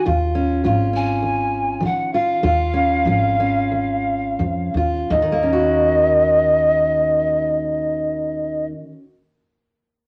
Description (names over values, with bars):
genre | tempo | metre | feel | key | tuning
acoustic folk duo or small band | 82-105 BPM | 4/4 | straight | Eb minor | A4 = 440 Hz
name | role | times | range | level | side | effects
mellow polished pan flute | melody | 0.0-8.7 s | Eb5 to Ab5 | -21 LUFS | equal | none
fingerpicked steel-string acoustic guitar | accompaniment | 0.0-9.1 s | Eb2 to Gb4 | -24 LUFS | equal | none
upright bass | bass | 0.0-8.7 s | Ab1 to Eb3 | -27 LUFS | equal | none
room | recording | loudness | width
moderate studio reverb, RT60 0.8 s | none | -19 LUFS | mono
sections
0.0-5.1 A section; 5.1-8.1 B section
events
slowing down 0.1-5.1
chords
0.1 Db; 5.1 Ebm7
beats
| 0.07 0.65 1.23 1.83 | 2.44 3.06 3.72 4.40 | 5.11 5.85 6.58 7.32